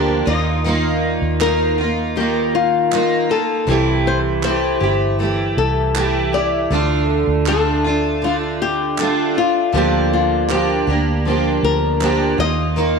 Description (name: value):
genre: acoustic pop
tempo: 79 BPM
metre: 4/4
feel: straight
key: unclear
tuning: A4 = 440 Hz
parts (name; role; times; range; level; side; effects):
- flamenco guitar; melody; 0.0-13.0 s; F4 to Eb5; -20 LUFS; left 8 dB; slapback echo
- picked steel-string acoustic guitar; accompaniment; 0.0-13.0 s; C3 to G4; -18 LUFS; right 2 dB; double-tracked left and right
- vintage muted fingered electric bass; bass; 0.0-13.0 s; G1 to Eb2; -21 LUFS; right 2 dB; none
- group handclap; percussion; 1.4-12.2 s; none; -29 LUFS; right 11 dB; none
room: moderate echo chamber reverb, RT60 2.2 s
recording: 1960s-style stereo with parts hard left and right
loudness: -15 LUFS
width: side -5 dB against mid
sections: 0.0-13.0 A section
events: none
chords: 0.3 Ebsus2; 3.7 C6; 6.7 Dm; 9.7 Gm7/D; 12.4 Ebsus2